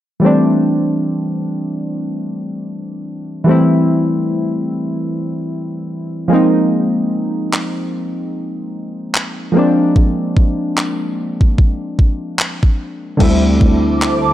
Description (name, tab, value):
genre	contemporary R&B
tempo	74 BPM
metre	4/4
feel	swing 58% on 16ths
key	unclear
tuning	A4 = 440 Hz
part	warm analog keys	accompaniment	0.2-14.3 s	D3 to E4	-16 LUFS	equal	chorus
part	crisp 8-bit digital drum machine	drums	7.5-14.2 s	crash cymbal, handclaps, kick drum	-14 LUFS	equal	none
part	ethereal airy pad	sustained chords	13.7-14.3 s	C5 to D6	-19 LUFS	right 3 dB	ensemble chorus, built-in reverb
part	fat analog bass	bass	13.2-14.3 s	D2	-16 LUFS	equal	none
room	digital ambience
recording	dry, gritty hardware recording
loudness	-14 LUFS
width	side -12 dB against mid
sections	0.2-13.2 A section; 13.2-14.3 B section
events	hi-hats muted 13.2-14.3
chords	0.2 D9sus4; 6.3 Bb9sus4; 13.2 D9sus4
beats	| 0.23 1.04 1.85 2.66 | 3.47 4.28 5.09 5.91 | 6.72 7.53 8.34 9.15 | 9.96 10.77 11.58 12.39 | 13.20 14.01